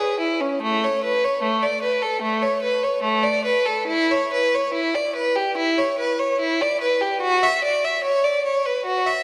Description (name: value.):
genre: classical, baroque-style suite movement for unaccompanied violin.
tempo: 72 BPM.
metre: 4/4.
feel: rubato.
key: unclear.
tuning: A4 = 440 Hz.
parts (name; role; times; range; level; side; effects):
rich violin; solo; 0.0-9.2 s; A3 to E5; -21 LUFS; equal; none.
room: wet church reverb, RT60 2.5 s.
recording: none.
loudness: -21 LUFS.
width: mono.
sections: 0.0-9.2 A section.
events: none.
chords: none.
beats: | 0.62 1.43 2.23 3.03 | 3.89 4.75 5.58 6.41 | 7.22 8.05 8.88.